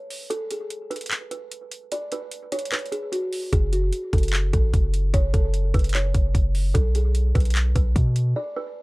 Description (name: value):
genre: hip hop, trap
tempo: 149 BPM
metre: 4/4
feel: half-time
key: F# minor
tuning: A4 = 440 Hz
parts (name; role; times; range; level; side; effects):
- buzzing kalimba; melody; 0.0-8.7 s; F#4 to D5; -30 LUFS; right 1 dB; low-pass filter, analog delay
- trap drum kit; drums; 0.1-8.3 s; handclaps, hi-hat, kick drum; -23 LUFS; equal; none
- long sustained 808-style bass; bass; 3.5-8.3 s; F#1 to B2; -21 LUFS; equal; none
room: little or no reverb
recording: none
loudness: -21 LUFS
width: side -24 dB against mid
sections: 0.0-8.8 A section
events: break 0.0-3.5, 8.4-8.8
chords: 0.0 N.C.; 3.5 F#m; 6.7 B5